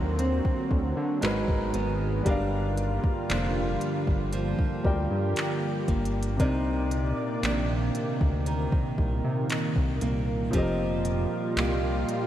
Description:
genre	contemporary R&B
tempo	58 BPM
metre	4/4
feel	straight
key	C minor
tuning	A4 = 440 Hz
part	warm concert grand piano	accompaniment	0.0-12.3 s	C3 to G5	-33 LUFS	left 2 dB	none
part	lush unison pad	sustained chords	0.0-12.3 s	Bb2 to D5	-31 LUFS	equal	chorus, sidechain pumping
part	nylon-string guitar	arpeggios	0.0-12.3 s	G2 to A#4	-33 LUFS	right 4 dB	lush chorus, diffuse ambient delay
part	fat analog bass	bass	0.0-12.0 s	F1 to D3	-29 LUFS	equal	none
part	smooth R&B drum kit	drums	0.2-12.3 s	handclaps, hi-hat, kick drum	-30 LUFS	equal	none
room	moderate huge ambient reverb, RT60 5.6 s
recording	dreamy mix soaked in reverb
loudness	-24 LUFS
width	side -12 dB against mid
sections	0.0-12.3 A section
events	none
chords	0.0 D7alt; 1.2 Abm7; 2.3 Gm7; 6.4 Cm9; 10.5 F9sus4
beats	0.19 1.22 | 2.26 3.29 4.33 5.36 | 6.40 7.43 8.46 9.50 | 10.53 11.57

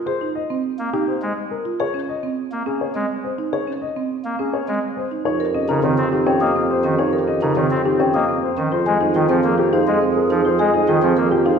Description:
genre	classical, minimalist pattern music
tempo	104 BPM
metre	3/4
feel	straight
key	unclear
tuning	A4 = 439 Hz
part	marimba with medium mallets	arpeggios	0.0-11.6 s	C4 to Bb4	-23 LUFS	right 7 dB	none
part	dark baby grand piano	melody	0.1-11.6 s	G4 to Eb5	-24 LUFS	left 7 dB	none
part	chamber organ, soft reed	accompaniment	0.8-11.3 s	Db3 to C4	-24 LUFS	equal	none
part	mellow wooden-headed alto flute	second line	5.3-11.6 s	G4 to Ab4	-24 LUFS	right 1 dB	none
part	dark bassoon	bass	5.3-11.6 s	F2	-23 LUFS	right 1 dB	none
part	celesta	arpeggios	5.7-11.6 s	F5 to Eb6	-25 LUFS	left 4 dB	none
room	wet scoring stage reverb, RT60 1.9 s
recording	heard from further back in the room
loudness	-17 LUFS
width	side -6 dB against mid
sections	0.0-5.3 A section; 5.3-11.6 B section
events	none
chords	0.0 Ab; 1.8 Dbsus2; 5.3 Eb7/F; 8.7 Fm9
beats	| 0.07 0.64 1.22 | 1.80 2.37 2.95 | 3.53 4.10 4.68 | 5.26 5.83 6.41 | 6.99 7.57 8.14 | 8.72 9.30 9.87 | 10.45 11.03

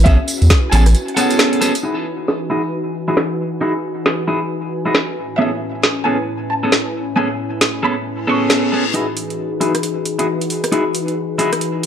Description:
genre	UK garage, two-step garage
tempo	135 BPM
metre	4/4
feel	swing 61% on 16ths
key	E major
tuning	A4 = 442 Hz
part	airy breathy pad	sustained chords	0.0-11.9 s	A2 to G#5	-23 LUFS	left 2 dB	chorus, sidechain pumping
part	saturated sub bass	bass	0.0-0.9 s	A1 to E2	-10 LUFS	equal	none
part	dark chamber violin section	melody	0.1-1.3, 5.4-8.4 s	E5 to C#6	-23 LUFS	right 1 dB	digital delay
part	electric guitar at the edge of break-up	stabs	0.1-11.5 s	B3 to A4	-19 LUFS	equal	low-pass filter, digital delay
part	electronic kick drum	drums	0.1-0.6 s	none	-13 LUFS	equal	overdrive, studio reverb
part	garage drum kit	drums	0.1-11.9 s	hi-hat, rim click, snare drum	-18 LUFS	equal	overdrive, low-pass filter on hats, studio reverb, low-pass filter on snare
part	tambourine	percussion	0.1-1.8 s	none	-26 LUFS	right 2 dB	none
part	reverse cymbal	sound effects	8.2-8.9 s	none	-25 LUFS	left 6 dB	none
room	moderate digital room reverb, RT60 0.9 s, digital ambience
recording	dark, warm production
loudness	-15 LUFS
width	side -9 dB against mid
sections	0.0-1.8 A section; 1.8-8.9 B section; 8.9-11.9 C section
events	break 0.9-1.8; filter sweep on drum 1.8-8.9; filter sweep on analog synth pad 1.8-8.9, 8.9-11.9; reverse cymbal 8.2-8.9; build-up 8.9-11.9; filter sweep on clean electric guitar 8.9-11.9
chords	0.0 Amaj9; 1.8 Emaj9; 5.2 Amaj9; 8.9 Emaj9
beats	| 0.06 0.50 0.95 1.39 | 1.83 2.28 2.72 3.17 | 3.61 4.06 4.50 4.95 | 5.39 5.83 6.28 6.72 | 7.17 7.61 8.06 8.50 | 8.95 9.39 9.84 10.28 | 10.72 11.17 11.61

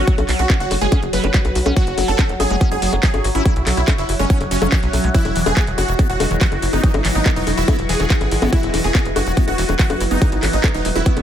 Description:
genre	psychedelic trance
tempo	142 BPM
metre	4/4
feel	straight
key	unclear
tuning	A4 = 441 Hz
part	supersaw stab	melody	0.0-11.2 s	C#4 to B4	-24 LUFS	right 1 dB	phaser, sidechain pumping, digital delay
part	overtone-sweeping drone	sustained chords	0.0-11.2 s	F#3 to F#4	-26 LUFS	left 1 dB	chorus, built-in reverb, sidechain pumping
part	liquid acid bass	riff	0.0-11.2 s	D#3 to F#4	-26 LUFS	moving between left 3 dB and right 6 dB	phaser, auto-pan, sidechain pumping, tape echo
part	tight sequencer bass	bass	0.0-11.2 s	E1 to B1	-21 LUFS	equal	tube saturation
part	granular cloud pad	texture	0.0-11.2 s	E4 to F#5	-27 LUFS	equal	built-in reverb, sidechain pumping
part	drum and bass drum kit	drums	0.1-11.2 s	bongos, handclaps, hi-hat	-23 LUFS	left 3 dB	none
part	electronic kick drum	drums	0.1-11.1 s	none	-17 LUFS	equal	none
part	formant-sweep wobble bass	second line	0.4-0.6, 5.5-8.9 s	F#3 to C#4	-36 LUFS	left 5 dB	none
room	digital ambience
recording	none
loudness	-15 LUFS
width	side -10 dB against mid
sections	0.0-11.2 A section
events	none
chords	0.0 F#5; 5.1 E5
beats	| 0.07 0.50 0.92 1.34 | 1.76 2.19 2.61 3.03 | 3.46 3.88 4.30 4.72 | 5.14 5.57 5.99 6.41 | 6.83 7.26 7.68 8.10 | 8.53 8.95 9.37 9.79 | 10.22 10.64 11.06

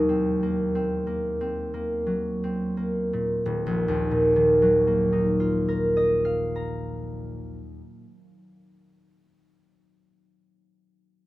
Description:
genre	classical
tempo	31 BPM (dotted quarters)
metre	6/8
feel	rubato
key	Eb minor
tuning	A4 = 440 Hz
part	concert harp	accompaniment	0.0-8.8 s	Eb1 to Bb5	-22 LUFS	equal	none
room	light reverb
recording	close, detailed microphones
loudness	-22 LUFS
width	side -16 dB against mid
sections	0.0-3.5 A section; 3.5-7.3 B section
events	slowing down 0.0-3.5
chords	0.0 Ebm6; 3.5 Ebmadd9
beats	1.41 | 3.45 5.39

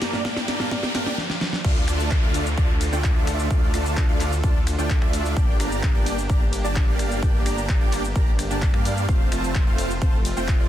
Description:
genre	EDM, festival progressive house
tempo	129 BPM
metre	4/4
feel	straight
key	D minor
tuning	A4 = 440 Hz
part	supersaw pad	sustained chords	0.0-10.7 s	G2 to Bb4	-34 LUFS	equal	sidechain pumping
part	supersaw chords	riff	0.0-10.7 s	A3 to Bb5	-28 LUFS	right 1 dB	wide subtle chorus, sidechain pumping, ping-pong delay
part	big-room dance drum kit	drums	0.0-10.6 s	cabasa, crash cymbal, finger snaps, handclaps, hi-hat, ride cymbal, snare drum	-30 LUFS	equal	none
part	riser and downlifter	sound effects	0.0-5.4 s	none	-33 LUFS	equal	none
part	fingerpicked swing-style acoustic guitar	accompaniment	0.1-1.1 s	G2 to Bb4	-34 LUFS	right 2 dB	sidechain pumping, ping-pong delay
part	electronic kick drum	drums	0.2-10.6 s	none	-20 LUFS	equal	high-pass filter on kick
part	wide detuned saw bass	bass	1.6-10.7 s	F1 to G2	-27 LUFS	equal	chorus, sidechain pumping
room	little or no reverb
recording	dense, heavily limited modern master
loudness	-19 LUFS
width	side -12 dB against mid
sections	0.0-1.6 A section; 1.6-10.7 B section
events	build-up 0.0-1.6; drum fill 0.0-1.2, 1.2-1.6; riser 0.0-1.2; drop 1.6-10.7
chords	0.0 Gm; 1.6 Dm; 5.4 Gm; 9.1 F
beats	0.25 0.71 1.18 | 1.65 2.11 2.58 3.04 | 3.50 3.97 4.44 4.90 | 5.37 5.83 6.30 6.76 | 7.23 7.69 8.16 8.62 | 9.09 9.55 10.02 10.48

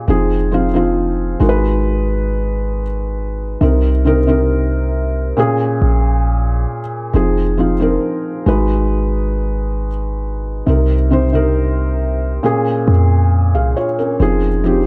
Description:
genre	contemporary R&B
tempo	68 BPM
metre	4/4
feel	straight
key	F minor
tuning	A4 = 439 Hz
part	felt-muted upright piano	accompaniment	0.0-14.9 s	Bb2 to F5	-19 LUFS	equal	none
part	warm 808-style bass	bass	0.1-14.9 s	F1 to F2	-18 LUFS	equal	none
room	light reverb, studio reverb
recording	none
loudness	-16 LUFS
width	mono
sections	0.0-14.9 A section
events	none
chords	0.1 Fm7; 1.4 Abm7; 3.6 Cm7; 5.4 Bbm7; 7.1 Fm7; 8.5 Abm7; 10.7 Cm7; 12.4 Bbm7; 14.2 Fm7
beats	| 0.08 0.96 1.84 2.73 | 3.61 4.49 5.37 6.25 | 7.14 8.02 8.90 9.78 | 10.67 11.55 12.43 13.31 | 14.20

